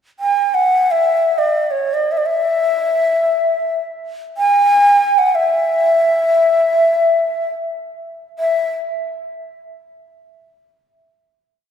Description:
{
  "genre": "Arabic maqam ensemble",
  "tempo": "free time",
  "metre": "none",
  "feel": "none",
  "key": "E maqam rast",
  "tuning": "A4 = 440 Hz",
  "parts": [
    { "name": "breathy bright low ney", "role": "solo", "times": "0.2-8.7 s", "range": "C#5 to G#5-48c", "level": "-14 LUFS", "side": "equal", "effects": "none" }
  ],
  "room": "wet church reverb, RT60 3.0 s",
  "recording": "recorded in a church or concert hall",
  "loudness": "-13 LUFS",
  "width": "side -8 dB against mid",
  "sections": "0.0-8.4 free-time section; 8.4-10.5 final note",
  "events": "none",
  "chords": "none",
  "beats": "free time"
}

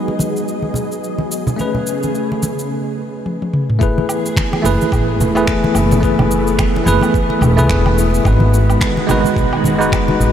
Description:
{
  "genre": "sunset chillout",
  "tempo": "108 BPM",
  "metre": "4/4",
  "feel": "swing 57% on 16ths",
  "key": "F# dorian",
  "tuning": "A4 = 440 Hz",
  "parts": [
    { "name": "bell-like tine electric piano", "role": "accompaniment", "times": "0.0-10.3 s", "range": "G#3 to B4", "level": "-18 LUFS", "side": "moving between left 5 dB and right 6 dB", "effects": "fast stereo tremolo, auto-pan, ping-pong delay" },
    { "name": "soft string machine", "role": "sustained chords", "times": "0.0-10.3 s", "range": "C#3 to D#5", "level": "-20 LUFS", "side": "equal", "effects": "ensemble chorus" },
    { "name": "congas", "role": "percussion", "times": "0.1-10.2 s", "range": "none", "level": "-21 LUFS", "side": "equal", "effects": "none" },
    { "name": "smooth R&B drum kit", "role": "drums", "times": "0.2-10.3 s", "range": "finger snaps, shaker, toms, woodblock", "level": "-23 LUFS", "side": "equal", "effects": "none" },
    { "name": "electronic kick drum", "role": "drums", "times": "3.8-10.0 s", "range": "none", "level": "-18 LUFS", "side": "equal", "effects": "none" },
    { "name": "upright bass", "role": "bass", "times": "4.6-10.3 s", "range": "E1 to C#2", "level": "-16 LUFS", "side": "equal", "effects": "none" }
  ],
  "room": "moderate huge ambient reverb, RT60 7.4 s",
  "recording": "dreamy mix soaked in reverb",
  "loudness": "-13 LUFS",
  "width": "side -9 dB against mid",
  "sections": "0.0-3.8 A section; 3.8-10.3 B section",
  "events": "drum fill 3.3-3.8",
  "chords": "0.0 G#m7; 1.6 Amaj9; 3.8 F#m11; 8.3 G#m7",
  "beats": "0.48 1.03 | 1.59 2.14 2.70 3.25 | 3.81 4.37 4.92 5.48 | 6.03 6.59 7.14 7.70 | 8.25 8.81 9.37 9.92"
}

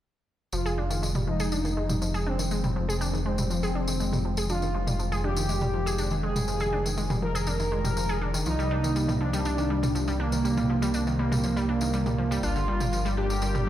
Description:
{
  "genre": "melodic techno",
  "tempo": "121 BPM",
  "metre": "4/4",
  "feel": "straight",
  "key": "F dorian",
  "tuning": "A4 = 440 Hz",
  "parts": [
    { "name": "analog synth brass", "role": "melody", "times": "0.5-13.7 s", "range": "Bb3 to Bb4", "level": "-30 LUFS", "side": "right 1 dB", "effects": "chorus, tape echo" },
    { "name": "lush unison pad", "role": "sustained chords", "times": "0.7-13.7 s", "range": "C3 to Bb4", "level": "-34 LUFS", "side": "equal", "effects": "chorus, phaser" },
    { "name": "wide unison pluck", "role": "arpeggios", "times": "0.5-13.7 s", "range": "D3 to Ab4", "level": "-32 LUFS", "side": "equal", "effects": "cassette tape, tape echo" },
    { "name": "swelling detuned saw bass", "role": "bass", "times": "0.5-13.7 s", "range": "F1 to C2", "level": "-29 LUFS", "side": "equal", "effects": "none" },
    { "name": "tambourine", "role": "percussion", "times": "0.5-13.6 s", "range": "none", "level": "-37 LUFS", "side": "left 2 dB", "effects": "none" },
    { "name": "electronic toms", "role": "drums", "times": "1.2-13.6 s", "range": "none", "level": "-31 LUFS", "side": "equal", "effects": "studio reverb" }
  ],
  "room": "light reverb",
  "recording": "played on a big sound system in a bare room, large studio reverb",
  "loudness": "-24 LUFS",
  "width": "side -12 dB against mid",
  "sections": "0.5-13.7 A section",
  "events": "filter sweep on analog polysynth 0.5-13.7",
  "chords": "0.5 Fm7; 8.5 Cm7; 12.4 Gm7",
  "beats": "| 0.53 1.03 1.52 2.02 | 2.51 3.01 3.50 4.00 | 4.50 4.99 5.49 5.98 | 6.48 6.98 7.47 7.97 | 8.46 8.96 9.46 9.95 | 10.45 10.94 11.44 11.94 | 12.43 12.93 13.42"
}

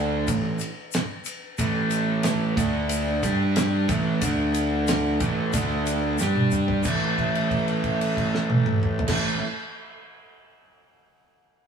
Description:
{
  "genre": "classic rock",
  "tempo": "91 BPM",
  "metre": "4/4",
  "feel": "straight",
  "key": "unclear",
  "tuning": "A4 = 441 Hz",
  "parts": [
    { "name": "raw garage guitar", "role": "riff", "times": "0.0-9.4 s", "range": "A2 to G4", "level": "-26 LUFS", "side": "right 1 dB", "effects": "overdrive, spring reverb" },
    { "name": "fuzz picked electric bass", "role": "bass", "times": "0.0-9.4 s", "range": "A1 to G2", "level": "-26 LUFS", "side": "right 1 dB", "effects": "overdrive" },
    { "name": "damped 70s drum kit", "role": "drums", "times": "0.3-9.2 s", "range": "crash cymbal, kick drum, ride cymbal, snare drum, toms", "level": "-27 LUFS", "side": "right 1 dB", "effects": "none" },
    { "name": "tube shaker", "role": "percussion", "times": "0.3-7.1 s", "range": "none", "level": "-38 LUFS", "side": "left 6 dB", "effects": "none" }
  ],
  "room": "moderate stone room reverb, RT60 1.2 s",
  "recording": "band playing live in one room, small room ambience",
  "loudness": "-21 LUFS",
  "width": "side -7 dB against mid",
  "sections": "0.0-6.9 A section; 6.9-9.5 B section",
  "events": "drum fill 6.2-6.9; held note 6.9-9.1",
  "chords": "0.3 A5; 2.6 D5; 3.2 G5; 3.9 A5; 4.2 D5; 5.2 A5; 5.5 D5; 6.2 G5; 6.9 A5",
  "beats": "0.28 0.93 | 1.59 2.25 2.90 3.56 | 4.22 4.88 5.54 6.19 | 6.85 7.51 8.17 8.82"
}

